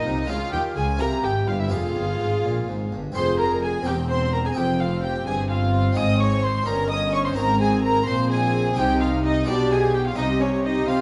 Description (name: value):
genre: classical, baroque-style concerto movement with solo episodes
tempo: 85 BPM (dotted quarters)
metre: 6/8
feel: straight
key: F minor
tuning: A4 = 440 Hz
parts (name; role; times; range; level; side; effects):
- dark violin; melody; 0.0-11.0 s; Db5 to Eb6; -31 LUFS; equal; none
- warm chamber violin section; melody; 0.0-11.0 s; Db5 to Eb6; -34 LUFS; equal; none
- warm chamber violin section; second line; 0.0-11.0 s; Db4 to Eb5; -31 LUFS; equal; none
- harpsichord; accompaniment; 0.0-11.0 s; E2 to C5; -34 LUFS; equal; none
- rich chamber viola section; accompaniment; 0.0-11.0 s; C4 to Ab4; -29 LUFS; equal; none
- dark studio cello section; bass; 0.0-11.0 s; E2 to C4; -30 LUFS; equal; none
- rich chamber double bass section; bass; 0.0-11.0 s; E1 to C3; -29 LUFS; equal; none
room: moderate recital hall reverb, RT60 1.4 s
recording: nothing above 11.0 kHz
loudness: -22 LUFS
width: mono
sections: 0.0-3.2 A section; 3.2-11.0 A section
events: none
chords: 0.3 Db; 1.0 C; 1.7 Fm; 3.9 C7/E; 4.6 Fm; 6.0 Ab; 6.7 Eb7/G; 7.4 Ab; 8.8 Cm; 9.5 G7/B; 10.2 Cm